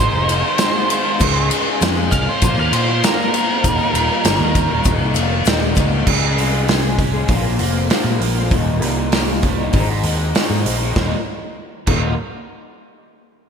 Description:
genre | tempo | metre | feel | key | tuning
indie rock | 98 BPM | 4/4 | straight | Eb mixolydian | A4 = 441 Hz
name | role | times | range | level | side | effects
octave-fuzz lead guitar | melody | 0.0-4.8 s | Bb4 to F5 | -21 LUFS | right 3 dB | distortion, digital delay
electric guitar through a small old amp | riff | 0.0-12.1 s | Eb2 to Ab4 | -24 LUFS | left 6 dB | ensemble chorus
raw garage guitar | riff | 0.0-12.1 s | Eb2 to Eb4 | -25 LUFS | right 5 dB | overdrive, wide subtle chorus, digital delay
fingered electric bass | bass | 0.0-12.2 s | Eb1 to Bb2 | -20 LUFS | equal | none
loose indie drum kit | drums | 0.3-12.0 s | crash cymbal, hi-hat, kick drum, ride cymbal, snare drum | -18 LUFS | equal | gated reverb
egg shaker | percussion | 0.3-5.9 s | none | -34 LUFS | left 10 dB | none
room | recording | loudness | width
moderate lush hall reverb, RT60 2.7 s | bright 1980s-style digital production | -15 LUFS | side -7 dB against mid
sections
0.0-6.1 A section; 6.1-11.0 B section; 11.0-13.4 C section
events
lead electric guitar solo 0.0-6.1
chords
0.0 Ab; 1.2 Dbadd9; 2.4 Bbsus2; 3.6 Eb; 6.1 Dbsus2; 7.3 Bbsus2; 8.5 Eb; 9.7 Ab; 11.0 Eb

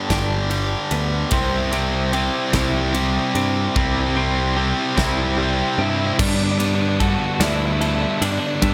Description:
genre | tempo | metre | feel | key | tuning
post-rock | 49 BPM (dotted quarters) | 6/8 | straight | G major | A4 = 439 Hz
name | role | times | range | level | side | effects
pedal steel guitar | sustained chords | 0.0-8.7 s | G3 to C6 | -36 LUFS | equal | none
clean electric guitar | arpeggios | 0.0-8.7 s | C3 to A4 | -30 LUFS | equal | tremolo, analog delay
distorted electric guitar | riff | 0.0-6.2 s | G2 to C4 | -25 LUFS | equal | overdrive
picked electric bass | bass | 0.1-8.7 s | G1 to G2 | -25 LUFS | equal | none
big rock drum kit | drums | 0.1-8.7 s | crash cymbal, kick drum, ride cymbal, snare drum | -28 LUFS | equal | none
overdriven electric guitar | riff | 1.3-8.7 s | G2 to E4 | -27 LUFS | equal | none
octave-fuzz lead guitar | melody | 5.8-8.7 s | D4 to F#4 | -28 LUFS | equal | distortion
room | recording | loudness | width
light reverb | none | -20 LUFS | mono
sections
0.0-6.2 A section; 6.2-8.7 B section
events
build-up 0.0-6.2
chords
0.0 Gadd9; 1.3 C; 6.2 Gadd9

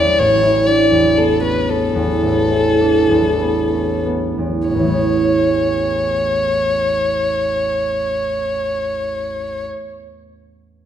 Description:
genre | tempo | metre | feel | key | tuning
classical, impressionist duo for violin and harp | 44-64 BPM | 4/4 | rubato | A major | A4 = 436 Hz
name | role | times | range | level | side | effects
warm violin | melody | 0.0-9.6 s | A4 to D5 | -17 LUFS | left 2 dB | none
concert harp | accompaniment | 0.0-9.9 s | A1 to F#4 | -17 LUFS | right 2 dB | none
room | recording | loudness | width
moderate scoring stage reverb, RT60 1.5 s | dark, warm production | -14 LUFS | side -10 dB against mid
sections
0.0-4.7 A section; 4.7-9.8 B section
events
slowing down 0.0-4.7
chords
0.2 Bm11/A; 4.7 Aadd9

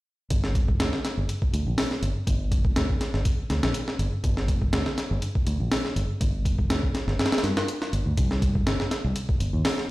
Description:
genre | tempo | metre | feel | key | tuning
breakbeat, breaks | 122 BPM | 4/4 | swing 54% on 16ths | unclear | A4 = 440 Hz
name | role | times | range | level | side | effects
fingered electric bass | bass | 0.3-9.6 s | G1 to G2 | -26 LUFS | equal | none
breakbeat sampler-style drum kit | drums | 0.3-9.9 s | hi-hat, kick drum, snare drum | -25 LUFS | equal | small room ambience
room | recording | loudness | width
light reverb | played on a big sound system in a bare room, stone room reverb | -23 LUFS | side -18 dB against mid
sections
0.3-9.9 A section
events
none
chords
none

